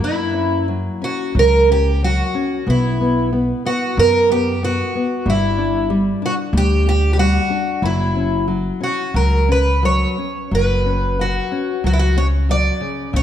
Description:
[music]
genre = fado-style ballad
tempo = 92 BPM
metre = 4/4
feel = uneven beats, rubato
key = unclear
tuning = A4 = 440 Hz
[part]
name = picked twelve-string acoustic guitar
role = melody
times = 0.0-13.2 s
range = E4 to D5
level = -19 LUFS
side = right 1 dB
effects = none
[part]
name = nylon-string guitar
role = accompaniment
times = 0.0-13.2 s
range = C#3 to D4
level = -22 LUFS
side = left 2 dB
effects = none
[part]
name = upright bass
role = bass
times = 0.0-13.2 s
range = F#1 to F#2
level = -18 LUFS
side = equal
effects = none
[sound]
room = moderate scoring stage reverb, RT60 2.0 s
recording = dark, warm production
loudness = -15 LUFS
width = side -10 dB against mid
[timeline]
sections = 0.0-13.2 A section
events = none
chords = 0.0 F#; 2.7 B5; 5.3 G5; 7.8 F#5

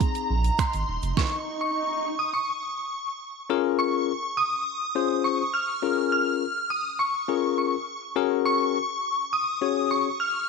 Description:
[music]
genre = dance-pop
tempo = 103 BPM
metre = 4/4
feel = straight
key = unclear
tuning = A4 = 439 Hz
[part]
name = shimmering bell with halo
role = melody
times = 0.0-10.5 s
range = Bb5 to F6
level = -26 LUFS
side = equal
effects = ensemble chorus, tape echo
[part]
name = barky tine electric piano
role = accompaniment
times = 0.0-10.1 s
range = C4 to Db5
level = -25 LUFS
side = left 14 dB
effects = sidechain pumping
[part]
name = smooth R&B drum kit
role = drums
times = 0.0-1.3 s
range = finger snaps, hi-hat, kick drum, snare drum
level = -25 LUFS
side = right 5 dB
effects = none
[part]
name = egg shaker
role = percussion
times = 0.0-1.2 s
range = none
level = -47 LUFS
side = right 18 dB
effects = none
[part]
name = swell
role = sound effects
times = 0.4-2.3 s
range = none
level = -34 LUFS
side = right 2 dB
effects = none
[part]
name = saturated sub bass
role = bass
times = 0.3-1.1 s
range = Eb1 to Bb1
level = -25 LUFS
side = right 2 dB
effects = sidechain pumping
[sound]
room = light reverb, digital ambience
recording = 1960s-style stereo with parts hard left and right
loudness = -23 LUFS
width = side -4 dB against mid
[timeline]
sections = 0.0-3.5 A section; 3.5-10.5 B section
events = swell 0.4-3.5; stop 1.2-3.5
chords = 0.0 Ab; 1.2 N.C.; 3.5 Db6; 8.2 Gbadd9

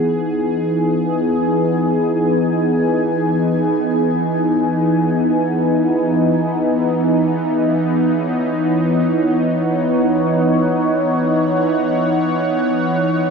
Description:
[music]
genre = ambient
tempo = free time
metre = none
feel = none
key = E major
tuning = A4 = 443 Hz
[part]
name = warm analog pad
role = solo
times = 0.0-13.3 s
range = E3 to G#5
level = -15 LUFS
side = equal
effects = chorus, ping-pong delay
[sound]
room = wet huge ambient reverb, RT60 7.9 s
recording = in a vast, echoing space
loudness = -15 LUFS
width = side -5 dB against mid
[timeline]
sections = 0.0-13.3 A section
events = none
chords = 0.0 Emaj7

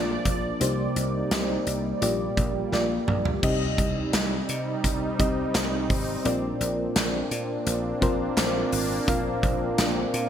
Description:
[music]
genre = 1980s-style pop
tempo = 85 BPM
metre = 4/4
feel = straight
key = unclear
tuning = A4 = 440 Hz
[part]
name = mellow FM electric piano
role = accompaniment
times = 0.0-10.3 s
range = Bb2 to F5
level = -28 LUFS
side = left 2 dB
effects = chorus
[part]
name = sweeping resonant pad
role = sustained chords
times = 0.0-10.3 s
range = C3 to D5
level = -30 LUFS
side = right 3 dB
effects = chorus
[part]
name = dry thumbed slap bass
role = bass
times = 0.0-10.3 s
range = Ab1 to C3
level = -31 LUFS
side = equal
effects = none
[part]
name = big rock drum kit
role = drums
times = 0.3-10.3 s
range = crash cymbal, hi-hat, kick drum, snare drum, toms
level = -27 LUFS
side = equal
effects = gated reverb
[part]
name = group handclap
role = percussion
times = 4.1-10.0 s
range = none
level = -39 LUFS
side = right 4 dB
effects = none
[sound]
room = moderate plate reverb, RT60 2.8 s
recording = bright 1980s-style digital production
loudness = -23 LUFS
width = side -9 dB against mid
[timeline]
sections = 0.0-3.4 A section; 3.4-10.3 B section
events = drum fill 2.7-3.4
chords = 0.0 Bb; 0.6 Cm7; 2.0 Bb6; 3.4 Cm; 6.3 Bbadd9

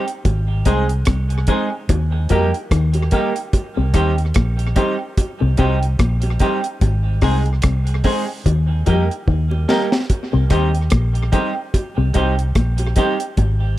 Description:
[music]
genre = roots reggae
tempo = 73 BPM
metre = 4/4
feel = swing 57% on 16ths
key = unclear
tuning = A4 = 441 Hz
[part]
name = semi-hollow electric guitar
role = accompaniment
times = 0.0-13.2 s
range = G3 to Ab4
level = -24 LUFS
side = right 5 dB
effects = tape echo
[part]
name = deep reggae drum kit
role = drums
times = 0.1-13.6 s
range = hi-hat, kick drum, rim click, snare drum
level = -18 LUFS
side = equal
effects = tape echo
[part]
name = electric guitar with an envelope filter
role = riff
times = 0.3-13.6 s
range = Ab2 to F3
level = -24 LUFS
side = left 5 dB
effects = none
[part]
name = vintage muted fingered electric bass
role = bass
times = 0.3-13.8 s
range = Ab1 to F2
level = -18 LUFS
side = equal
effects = none
[part]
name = bongos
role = percussion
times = 0.3-13.6 s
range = none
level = -29 LUFS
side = right 2 dB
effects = none
[part]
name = bright upright piano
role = stabs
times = 0.7-13.1 s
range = Eb4 to C5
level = -25 LUFS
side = left 5 dB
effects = none
[sound]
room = light reverb, small room reverb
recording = echo-heavy mix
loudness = -16 LUFS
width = side -15 dB against mid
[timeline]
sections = 0.0-13.8 A section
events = drum fill 9.3-10.1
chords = 0.3 Ab; 1.9 Eb; 3.5 Cm; 6.8 Ab; 8.5 Eb; 10.1 Cm

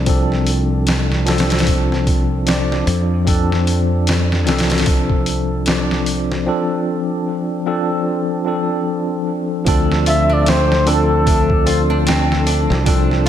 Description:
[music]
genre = trip hop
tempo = 75 BPM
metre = 4/4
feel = swing 58% on 16ths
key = D minor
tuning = A4 = 440 Hz
[part]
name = tine electric piano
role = accompaniment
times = 0.0-13.3 s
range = F3 to D5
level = -19 LUFS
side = left 1 dB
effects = medium stereo tremolo, harmonic tremolo, tape echo
[part]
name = modern bright fingered electric bass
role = bass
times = 0.0-13.3 s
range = C2 to F2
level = -18 LUFS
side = equal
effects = none
[part]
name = boom bap sampler-style drum kit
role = drums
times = 0.1-13.3 s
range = hi-hat, kick drum, snare drum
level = -19 LUFS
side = equal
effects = none
[part]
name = flamenco guitar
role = arpeggios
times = 9.7-13.3 s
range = C4 to F4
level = -24 LUFS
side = right 2 dB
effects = analog delay
[part]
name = trumpet with bucket mute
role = melody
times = 10.1-12.1 s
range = A4 to E5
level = -19 LUFS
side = left 1 dB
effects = tape echo
[sound]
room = moderate lush hall reverb, RT60 2.1 s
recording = dreamy mix soaked in reverb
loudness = -14 LUFS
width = side -10 dB against mid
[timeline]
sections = 0.0-9.7 A section; 9.7-13.3 B section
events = break 6.5-9.7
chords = 0.0 Dm7

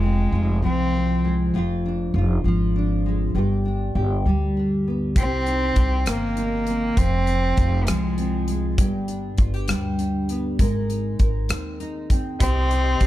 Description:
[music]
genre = six-eight pop ballad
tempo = 66 BPM (dotted quarters)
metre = 6/8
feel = straight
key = C minor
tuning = A4 = 438 Hz
[part]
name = warm cello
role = melody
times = 0.0-1.3, 5.2-8.6, 12.4-13.1 s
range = Ab3 to C4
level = -25 LUFS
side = equal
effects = tape echo
[part]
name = nylon-string guitar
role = accompaniment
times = 0.0-13.1 s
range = F2 to Bb4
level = -25 LUFS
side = equal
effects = double-tracked left and right
[part]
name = upright bass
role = bass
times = 0.0-13.1 s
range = F1 to Eb2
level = -23 LUFS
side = equal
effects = none
[part]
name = modern studio drum kit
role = drums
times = 5.2-13.1 s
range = hi-hat, kick drum, rim click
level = -21 LUFS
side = equal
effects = none
[part]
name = tonewheel organ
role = sustained chords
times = 12.4-13.1 s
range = G4 to C6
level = -33 LUFS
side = equal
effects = chorus vibrato, stopped rotary speaker
[sound]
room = studio reverb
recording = dark, warm production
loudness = -20 LUFS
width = side -14 dB against mid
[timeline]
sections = 0.0-13.1 A section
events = none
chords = 0.0 Fm; 1.5 Ddim/F; 3.3 G; 5.2 Cm; 7.0 Fm; 8.8 G; 10.6 Abadd9; 12.4 Cm

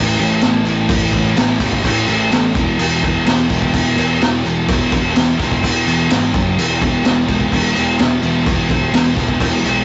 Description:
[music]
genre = garage rock duo or trio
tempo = 127 BPM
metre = 4/4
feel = straight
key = unclear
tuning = A4 = 438 Hz
[part]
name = thick fuzz guitar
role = riff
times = 0.0-9.8 s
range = E2 to A3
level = -21 LUFS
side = equal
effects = distortion
[part]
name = fuzz picked electric bass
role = bass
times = 0.0-9.8 s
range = E1 to B1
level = -24 LUFS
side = equal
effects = overdrive
[part]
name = raw garage drum kit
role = drums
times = 0.2-9.8 s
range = crash cymbal, kick drum, snare drum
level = -18 LUFS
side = equal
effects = none
[part]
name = tambourine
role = percussion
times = 0.2-9.8 s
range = none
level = -40 LUFS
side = equal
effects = none
[sound]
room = light reverb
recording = rough rehearsal-room recording, warm saturation, nothing above 7.9 kHz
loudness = -16 LUFS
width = mono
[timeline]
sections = 0.0-9.8 A section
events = none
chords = 0.0 A5; 2.6 E5; 6.3 F#5; 6.6 E5

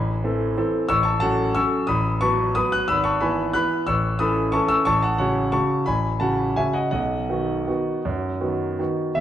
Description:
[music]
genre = classical, piano waltz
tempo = 156-194 BPM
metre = 3/4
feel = rubato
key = unclear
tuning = A4 = 440 Hz
[part]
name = warm concert grand piano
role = solo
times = 0.0-9.2 s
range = E1 to F#6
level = -20 LUFS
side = equal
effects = none
[sound]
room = wet recital hall reverb, RT60 1.5 s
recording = dark, warm production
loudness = -20 LUFS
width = side -11 dB against mid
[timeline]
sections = 0.0-9.2 A section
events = none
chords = 0.0 Am; 0.9 F#m7/A; 1.9 B7/A; 2.9 E/G#; 3.9 A; 4.9 F#m/A; 6.9 B

